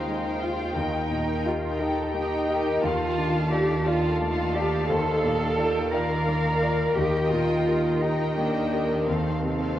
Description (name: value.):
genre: cinematic, emotional film score for orchestra.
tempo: 58 BPM (dotted quarters).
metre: 6/8.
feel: rubato.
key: Eb lydian.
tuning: A4 = 440 Hz.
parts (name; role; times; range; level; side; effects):
muted cello; melody; 0.0-9.8 s; C4 to Bb4; -30 LUFS; right 2 dB; none.
muted studio violin section; melody; 0.0-9.8 s; D5 to A5; -37 LUFS; left 2 dB; none.
muted studio violin section; second line; 0.0-9.8 s; G4 to G5; -32 LUFS; left 2 dB; none.
dark baby grand piano; accompaniment; 0.0-9.8 s; Eb2 to F5; -30 LUFS; left 1 dB; none.
muted studio viola section; accompaniment; 0.0-9.8 s; Bb3 to Bb4; -31 LUFS; right 1 dB; none.
concert harp; arpeggios; 0.0-9.8 s; Eb3 to G5; -32 LUFS; left 4 dB; none.
muted studio cello section; bass; 0.0-9.8 s; Eb3; -31 LUFS; right 2 dB; none.
muted studio double bass section; bass; 0.0-9.8 s; Eb2; -33 LUFS; right 2 dB; none.
room: wet scoring stage reverb, RT60 1.8 s.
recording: worn, warbling old tape, cassette tape, warbly pitch drift.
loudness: -22 LUFS.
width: side -12 dB against mid.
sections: 0.0-9.8 A section.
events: none.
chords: 0.0 Db/Eb; 0.8 Eb; 2.8 Dm/Eb; 4.9 Bb/Eb; 7.0 Eb; 9.1 F/Eb.